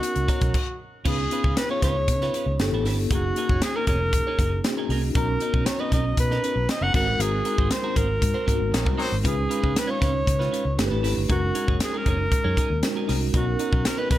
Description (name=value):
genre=polished 1980s jazz-funk pop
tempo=117 BPM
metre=4/4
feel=straight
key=F# major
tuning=A4 = 436 Hz
part: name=breathy alto saxophone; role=melody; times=0.0-14.2 s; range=F#4 to F#5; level=-27 LUFS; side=equal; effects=none
part: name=mellow tine electric piano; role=accompaniment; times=0.0-14.2 s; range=G#3 to A#5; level=-29 LUFS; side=left 1 dB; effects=medium stereo tremolo, lush chorus
part: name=clean electric guitar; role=riff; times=0.0-14.2 s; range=B#3 to C#5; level=-33 LUFS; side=right 4 dB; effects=analog chorus
part: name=crisp fusion drum kit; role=drums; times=0.0-14.2 s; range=crash cymbal, hi-hat, kick drum, snare drum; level=-25 LUFS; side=equal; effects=gated reverb
part: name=vintage muted fingered electric bass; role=bass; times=0.2-14.2 s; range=E#1 to C#3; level=-26 LUFS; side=equal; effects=none
part: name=warm horn section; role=second line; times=8.7-9.1 s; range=F#3 to B#4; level=-33 LUFS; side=left 2 dB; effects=tape echo
room=small room ambience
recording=none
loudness=-21 LUFS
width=side -14 dB against mid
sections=0.0-1.1 A section; 1.1-14.2 B section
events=stop 0.5-1.1; band accent 7.2-9.2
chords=0.0 Bmaj9; 1.1 C#7; 2.6 G69; 3.1 F#69; 5.2 Bmaj9; 6.9 G#9; 9.2 C#7; 10.8 G69; 11.3 F#69; 13.3 Bmaj9